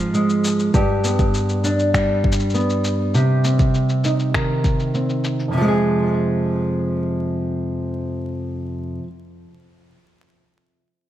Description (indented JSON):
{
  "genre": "folktronica",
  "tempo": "100 BPM",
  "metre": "4/4",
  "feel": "straight",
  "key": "F minor",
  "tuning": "A4 = 440 Hz",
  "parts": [
    { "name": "nylon-string guitar", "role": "arpeggios", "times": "0.0-9.2 s", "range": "F2 to Ab4", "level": "-18 LUFS", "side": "equal", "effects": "low-pass filter, digital delay" },
    { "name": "electronic cabasa and finger snaps", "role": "drums", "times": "0.1-5.5 s", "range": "none", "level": "-28 LUFS", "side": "left 2 dB", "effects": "low-pass filter on perc, studio ambience, low-pass filter on snare" },
    { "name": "electronic kick drum", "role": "drums", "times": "0.7-4.8 s", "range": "none", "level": "-20 LUFS", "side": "equal", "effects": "studio ambience" }
  ],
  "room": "light reverb, digital ambience",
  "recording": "vinyl crackle",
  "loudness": "-17 LUFS",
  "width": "side -12 dB against mid",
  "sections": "0.0-5.5 A section; 5.5-7.9 B section",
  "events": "filter sweep on drum 0.0-5.5; filter sweep on nylon-string guitar 0.0-5.5",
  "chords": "0.0 Ab6; 0.7 G; 3.1 Cm; 5.5 Fm",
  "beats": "0.14 | 0.74 1.34 1.94 2.54 | 3.14 3.74 4.34 4.94 | 5.54 6.14 6.74 7.34"
}